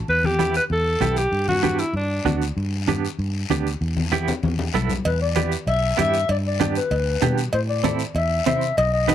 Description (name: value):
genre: latin, cumbia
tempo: 193 BPM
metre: 4/4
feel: straight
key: E minor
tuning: A4 = 440 Hz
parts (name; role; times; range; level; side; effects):
- semi-hollow electric guitar; accompaniment; 0.0-9.1 s; B3 to C5; -24 LUFS; right 11 dB; tremolo
- clear alto saxophone; melody; 0.1-2.4 s; D4 to B4; -21 LUFS; equal; none
- fingered electric bass; bass; 0.1-9.1 s; B1 to C3; -24 LUFS; equal; none
- guiro; percussion; 0.1-9.1 s; none; -34 LUFS; left 10 dB; none
- congas; percussion; 0.2-9.1 s; none; -27 LUFS; left 5 dB; none
- breathy clarinet; second line; 5.1-9.1 s; B4 to E5; -23 LUFS; left 4 dB; none
- cowbell and timbales; percussion; 5.1-9.1 s; none; -28 LUFS; right 4 dB; none
room: small room ambience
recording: dry, close 1970s-style studio recording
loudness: -19 LUFS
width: side -10 dB against mid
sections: 0.0-5.1 A section; 5.1-9.1 B section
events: drum fill 4.3-5.1; clarinet solo 5.1-9.1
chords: 0.1 Em; 1.3 G; 3.8 Em; 6.3 G; 7.5 Am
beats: | 0.09 0.40 0.71 1.02 | 1.33 1.64 1.95 2.26 | 2.57 2.88 3.19 3.50 | 3.81 4.13 4.44 4.75 | 5.06 5.37 5.68 5.99 | 6.30 6.61 6.92 7.23 | 7.54 7.85 8.16 8.47 | 8.78 9.09